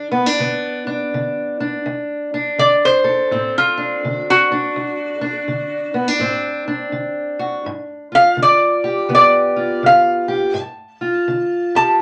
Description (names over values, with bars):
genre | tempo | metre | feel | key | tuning
acoustic country blues, solo or duo | 83 BPM | 4/4 | swing 64% on 8ths | unclear | A4 = 440 Hz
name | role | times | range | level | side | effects
fingerpicked steel-string acoustic guitar | accompaniment | 0.0-12.0 s | D2 to A4 | -22 LUFS | equal | none
lap resonator guitar | melody | 2.6-12.0 s | F4 to A5 | -16 LUFS | equal | none
room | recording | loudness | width
wet studio ambience, RT60 0.5 s | none | -17 LUFS | mono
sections
0.0-12.0 A section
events
none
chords
0.0 G (rootless); 1.9 D7; 7.7 G7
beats
0.41 1.14 | 1.86 2.59 3.31 4.04 | 4.76 5.49 6.21 6.94 | 7.67 8.39 9.11 9.84 | 10.56 11.28 12.01